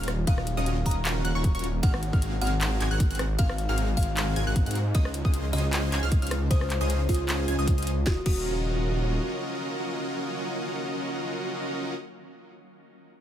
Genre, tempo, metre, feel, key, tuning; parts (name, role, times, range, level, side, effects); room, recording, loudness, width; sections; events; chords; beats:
future bass; 154 BPM; 4/4; swing 54% on 16ths, half-time; Eb dorian; A4 = 440 Hz
buzzing kalimba; melody; 0.0-12.6 s; F4 to Bb5; -35 LUFS; equal; sidechain pumping, ping-pong delay
shimmering ambient pad; sustained chords; 0.1-11.9 s; Db3 to F5; -40 LUFS; equal
wide unison pluck; arpeggios; 0.0-12.6 s; Db6 to Ab6; -38 LUFS; equal; sidechain pumping, dub echo
dense compressed supersaw; riff; 0.0-11.9 s; C4 to Ab5; -32 LUFS; equal; sidechain pumping
wide detuned saw bass; bass; 0.0-9.2 s; Eb1 to Ab2; -27 LUFS; equal; chorus, sidechain pumping
trap drum kit; drums; 0.0-8.4 s; crash cymbal, handclaps, hi-hat, ride cymbal, rim click, snare drum; -33 LUFS; left 1 dB
electronic kick drum; drums; 0.3-8.4 s; -24 LUFS; equal
little or no reverb; -24 LUFS; side -11 dB against mid
0.0-8.1 A section; 8.1-11.2 B section
drop 0.0-8.1
0.0 Ebm9; 1.8 Ab13; 4.9 Dbmaj9; 8.1 Ebm9
| 0.27 0.66 1.05 1.44 | 1.83 2.22 2.61 3.00 | 3.39 3.78 4.17 4.56 | 4.95 5.34 5.73 6.12 | 6.51 6.90 7.29 7.67 | 8.06 8.46 8.84 9.23 | 9.62 10.01 10.40 10.79